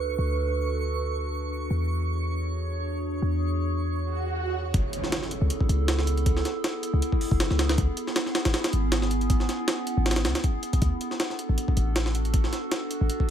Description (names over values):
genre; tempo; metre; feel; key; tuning
drum and bass, jungle; 158 BPM; 4/4; swing 54% on 16ths; F# minor; A4 = 441 Hz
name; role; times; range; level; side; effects
warbly tape-like pad; sustained chords; 0.0-13.3 s; B3 to C#5; -31 LUFS; right 2 dB; chorus, built-in reverb, phaser
warm 808-style bass; bass; 0.0-13.1 s; F#1 to E2; -26 LUFS; equal; tube saturation
twinkling granular texture; texture; 0.0-4.8 s; C#6; -39 LUFS; right 4 dB; built-in reverb
swell and impact; sound effects; 4.1-6.3 s; none; -34 LUFS; right 2 dB; none
jungle sampler-style drum kit; drums; 4.7-13.3 s; hi-hat, kick drum, snare drum; -26 LUFS; equal; overdrive, small room ambience
room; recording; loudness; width
little or no reverb; none; -24 LUFS; side -9 dB against mid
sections
0.0-4.7 A section; 4.7-13.3 B section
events
swell 4.1-4.7; drop 4.7-13.3; impact 4.7-6.3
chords
0.0 D6; 1.7 E13; 4.7 F#m11 (rootless); 7.8 C#m7; 10.8 D6